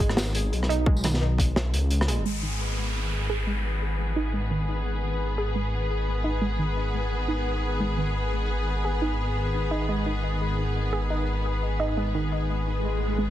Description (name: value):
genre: half-time drum and bass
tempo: 173 BPM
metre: 4/4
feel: swing 56% on 16ths, half-time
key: G# minor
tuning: A4 = 440 Hz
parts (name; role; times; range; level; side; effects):
- warbly dusty pluck; arpeggios; 0.0-13.3 s; D#3 to G#4; -31 LUFS; right 2 dB; chorus, ping-pong delay
- dark detuned saw bass; bass; 0.0-13.3 s; F#1 to C#2; -27 LUFS; equal; none
- electronic kick drum; drums; 0.0-1.5 s; none; -23 LUFS; equal; none
- crunchy breakbeat drum kit; drums; 0.1-2.2 s; hi-hat, rim click, snare drum, tambourine; -28 LUFS; equal; none
- bright symphonic string section; sustained chords; 2.3-13.3 s; D#3 to B4; -30 LUFS; left 1 dB; vintage 12-bit sampler grit, sidechain pumping, low-pass filter
- downlifter and swell; sound effects; 2.3-5.0, 12.8-13.3 s; none; -33 LUFS; equal; none
room: light reverb, small room ambience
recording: heavily compressed radio sound, multiband compression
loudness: -24 LUFS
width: side -12 dB against mid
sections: 0.0-2.3 A section; 2.3-13.3 B section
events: drop 0.0-2.3; kick drops out 1.9-2.3; band accent 2.0; filter sweep on synth pluck 2.3-13.3; swell 12.8-13.3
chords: 0.0 G#m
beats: 0.17 0.52 | 0.87 1.22 1.56 1.91 | 2.25 2.60 2.95 3.30 | 3.64 3.99 4.34 4.68 | 5.03 5.38 5.72 6.07 | 6.42 6.76 7.11 7.46 | 7.80 8.15 8.50 8.85 | 9.19 9.54 9.88 10.23 | 10.58 10.93 11.27 11.62 | 11.97 12.31 12.66 13.01